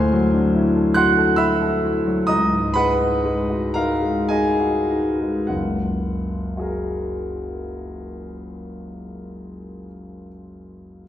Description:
classical, impressionist solo piano; 48-76 BPM; 3/4; rubato; A4 = 440 Hz
warm concert grand piano; solo; 0.0-11.0 s; Gb1 to F#6; -19 LUFS; equal
wet recital hall reverb, RT60 1.7 s; heard from further back in the room; -18 LUFS; side -11 dB against mid
0.0-5.5 A section; 5.5-8.8 B section
slowing down 0.0-5.5
0.0 D9; 2.3 Db9sus4; 5.5 Gbadd9

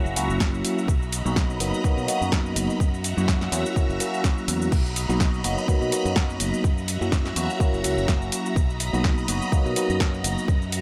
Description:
filtered disco house; 125 BPM; 4/4; swing 55% on 16ths; B major; A4 = 441 Hz
tine electric piano; accompaniment; 0.0-10.5 s; F#3 to F#4; -30 LUFS; equal; phaser, vintage 12-bit sampler grit, sidechain pumping
phased string machine; sustained chords; 0.0-10.8 s; F#4 to B5; -34 LUFS; equal; ensemble chorus, phaser, sidechain pumping
fingered electric bass; bass; 0.1-10.8 s; F#1 to B2; -31 LUFS; equal; tube saturation, sidechain pumping
house drum kit; drums; 0.1-10.8 s; crash cymbal, hi-hat, shaker, snare drum; -32 LUFS; equal; sidechain pumping on perc, sidechain pumping on hats, sidechain pumping on cymbals
electronic kick drum; drums; 0.4-10.6 s; -25 LUFS; equal
light reverb; -24 LUFS; mono
0.0-10.8 A section
0.0 F#7; 0.9 Bmaj7; 2.8 F#7; 4.7 Bmaj7; 6.6 F#7; 8.6 Bmaj7

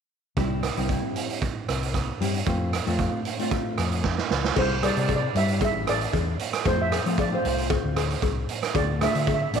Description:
calypso; 115 BPM; 4/4; straight; C major; A4 = 440 Hz
nylon-string guitar; accompaniment; 0.4-9.6 s; G3 to F4; -30 LUFS; left 1 dB; double-tracked left and right
hollow-body short-scale fingered electric bass; bass; 0.4-9.6 s; A1 to F3; -28 LUFS; left 2 dB
raw garage drum kit; drums; 0.4-9.6 s; crash cymbal, hi-hat, kick drum, rim click, snare drum; -27 LUFS; right 4 dB
steel pan; melody; 4.6-9.6 s; C5 to E5; -28 LUFS; right 3 dB
cowbell; percussion; 4.6-9.4 s; -32 LUFS; left 17 dB
light reverb, studio reverb; 1960s-style stereo; -23 LUFS; side -7 dB against mid
0.4-4.6 A section; 4.6-9.6 B section
drum fill 4.0-4.6
0.4 C; 2.5 F; 4.6 C; 6.7 F; 8.8 Dm

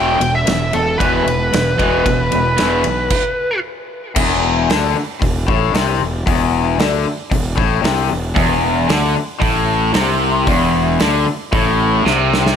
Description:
hard rock; 114 BPM; 4/4; straight; A4 = 440 Hz
bluesy overdriven lead guitar; melody; 0.0-3.6 s; A4 to G5; -18 LUFS; equal; distortion
cranked stack guitar; riff; 0.0-12.6 s; E2 to E3; -18 LUFS; left 11 dB; overdrive
cranked stack guitar; riff; 0.0-3.1, 8.4-12.6 s; E2 to E3; -20 LUFS; right 11 dB; overdrive
fuzz fingered electric bass; bass; 0.0-12.5 s; E1 to D2; -20 LUFS; equal; overdrive
big rock drum kit; drums; 0.2-12.6 s; crash cymbal, hi-hat, kick drum, ride cymbal, snare drum; -20 LUFS; right 1 dB
light reverb; -14 LUFS; side -8 dB against mid
0.0-4.2 A section; 4.2-12.6 B section
stop 3.1-4.2; drum fill 12.1-12.6
0.0 E5; 3.6 N.C.; 4.2 Amadd11/E

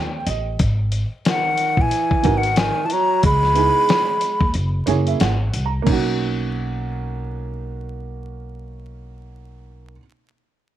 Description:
hip hop, jazz-hop; 91 BPM; 4/4; swing 59% on 16ths; B major; A4 = 441 Hz
breathy hollow jazz flute; melody; 0.0-4.5 s; F#5 to B5; -19 LUFS; left 2 dB
breathy tenor saxophone; second line; 0.0-4.5 s; D#3 to G#3; -24 LUFS; right 7 dB
dark grand piano; accompaniment; 0.0-10.0 s; A#3 to A#5; -25 LUFS; right 8 dB
upright bass; bass; 0.0-10.0 s; F#1 to D#2; -23 LUFS; equal
dusty soul sampler-style drum kit; drums; 0.3-6.0 s; crash cymbal, hi-hat, kick drum, snare drum; -22 LUFS; left 2 dB
light reverb, small room ambience; 1960s-style stereo, vinyl crackle; -17 LUFS; side -12 dB against mid
0.0-5.9 A section; 5.9-8.5 B section
grand piano fill 0.0-0.6, 4.6-5.9; break 4.6-5.9
0.0 D#; 0.6 G#7(no3); 3.2 C#m9; 4.6 F#9; 5.9 Bmaj9

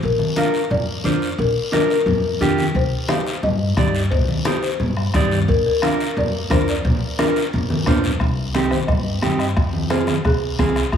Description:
latin, cumbia; 176 BPM; 4/4; straight; C minor; A4 = 438 Hz
folk marimba with medium mallets; melody; 0.0-11.0 s; F4 to F5; -24 LUFS; left 4 dB; analog delay
upright bass; bass; 0.0-11.0 s; Bb1 to G2; -23 LUFS; equal
congas; percussion; 0.0-11.0 s; -24 LUFS; left 1 dB
guiro; percussion; 0.0-11.0 s; -31 LUFS; left 4 dB
mellow electric guitar; accompaniment; 0.4-10.8 s; C4 to D5; -23 LUFS; right 3 dB
bombo; percussion; 2.7-11.0 s; -24 LUFS; left 1 dB
moderate plate reverb, RT60 3.4 s; dreamy mix soaked in reverb, small room ambience; -17 LUFS; side -8 dB against mid
0.0-8.2 A section; 8.2-11.0 B section
drum fill 7.7-8.2; marimba solo 8.2-11.0
0.0 Bb; 2.8 Cm; 5.5 Bb; 8.2 Cm; 9.6 Fm

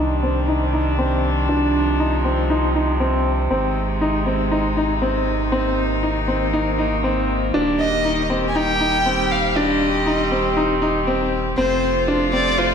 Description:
electronica; 119 BPM; 4/4; straight; C minor; A4 = 438 Hz
rich string quartet; sustained chords; 0.0-12.7 s; C3 to G4; -22 LUFS; equal
bright grand piano; riff; 0.0-12.7 s; C4 to F4; -21 LUFS; equal; low-pass filter, diffuse ambient delay
warm sub bass; bass; 0.0-12.7 s; Eb1 to C2; -24 LUFS; equal
dark violin; melody; 7.8-12.7 s; C5 to Ab5; -22 LUFS; equal; diffuse ambient delay
wet lush hall reverb, RT60 1.6 s, small room ambience; dreamy mix soaked in reverb; -17 LUFS; side -7 dB against mid
0.0-12.7 A section
filter sweep on grand piano 0.0-12.7
0.0 Cmadd9; 3.5 Ab; 7.5 Eb; 11.6 F

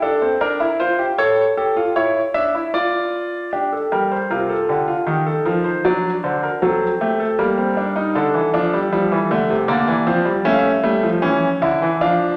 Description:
classical, baroque-style 3-part fugue for grand piano; 78 BPM; 3/4; straight; G minor; A4 = 441 Hz
bright concert grand piano; solo; 0.0-12.4 s; C3 to F5; -19 LUFS; equal
wet recital hall reverb, RT60 1.4 s; -19 LUFS; mono
0.0-3.5 A section; 3.5-12.4 B section
0.4 Gm/D; 1.2 A; 2.7 Dm/F; 3.5 Gm; 5.1 Cm/Eb; 5.8 D7; 7.4 Gm; 8.2 Dm; 9.7 Gm/D; 10.5 A7

